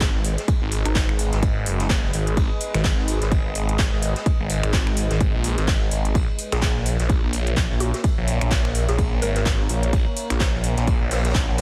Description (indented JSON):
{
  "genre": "bass house",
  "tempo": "127 BPM",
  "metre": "4/4",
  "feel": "swing 58% on 16ths",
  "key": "G# minor",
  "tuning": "A4 = 443 Hz",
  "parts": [
    { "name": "deep dark ambient pad", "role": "sustained chords", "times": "0.2-11.6 s", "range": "G#3 to F#5", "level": "-34 LUFS", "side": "equal", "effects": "chorus, built-in reverb, sidechain pumping" },
    { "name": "phased detuned saw bass", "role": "bass", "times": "0.0-11.6 s", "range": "F#1 to A#1", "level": "-25 LUFS", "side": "equal", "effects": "phaser, tube saturation, sidechain pumping" },
    { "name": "electronic kick drum", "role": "drums", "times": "0.0-11.5 s", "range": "none", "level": "-24 LUFS", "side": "equal", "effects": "small room ambience" },
    { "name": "house drum kit", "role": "drums", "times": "0.0-11.6 s", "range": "finger snaps, handclaps, hi-hat", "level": "-31 LUFS", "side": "equal", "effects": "small room ambience" },
    { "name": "jazz brush drum kit", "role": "drums", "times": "0.0-11.6 s", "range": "ride cymbal, snare drum", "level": "-38 LUFS", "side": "equal", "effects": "sidechain pumping on cymbals, high-pass filter on cymbals, small room ambience, high-pass filter on snare, high-pass filter on room" },
    { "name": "downlifter", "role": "sound effects", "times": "0.2-2.4 s", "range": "none", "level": "-48 LUFS", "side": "equal", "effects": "none" },
    { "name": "mallet-like synth pluck", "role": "melody", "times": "0.9-1.2, 6.5-9.4 s", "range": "D#4 to A#4", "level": "-34 LUFS", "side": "equal", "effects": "chorus, phaser, delay" }
  ],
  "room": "digital ambience",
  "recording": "heavily compressed radio sound",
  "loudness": "-22 LUFS",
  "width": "mono",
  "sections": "0.0-11.6 A section",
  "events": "none",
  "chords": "0.0 G#m; 6.2 A#dim"
}